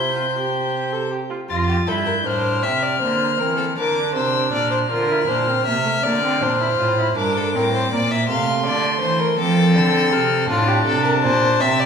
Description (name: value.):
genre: classical, baroque-style fugue for string quartet.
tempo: 53 BPM (dotted quarters).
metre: 12/8.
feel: straight.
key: F major.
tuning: A4 = 440 Hz.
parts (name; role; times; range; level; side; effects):
rich violin; melody; 0.0-11.9 s; A5 to Bb6; -24 LUFS; left 6 dB; none.
warm violin; second line; 0.0-11.9 s; F4 to F5; -21 LUFS; left 1 dB; none.
rich viola; accompaniment; 0.0-11.9 s; A3 to A4; -24 LUFS; right 2 dB; none.
warm cello; bass; 0.0-11.9 s; F2 to F3; -22 LUFS; right 2 dB; none.
room: wet recital hall reverb, RT60 1.6 s.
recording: recorded in a church or concert hall.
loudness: -17 LUFS.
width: side -6 dB against mid.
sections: 0.0-1.5 A section; 1.5-11.9 B section.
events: none.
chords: 0.0 C5; 1.5 F; 3.8 Bb; 8.3 F/C; 10.5 F/A (rootless).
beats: 0.35 | 1.50 2.64 3.78 4.91 | 6.04 7.17 8.28 9.39 | 10.50 11.61.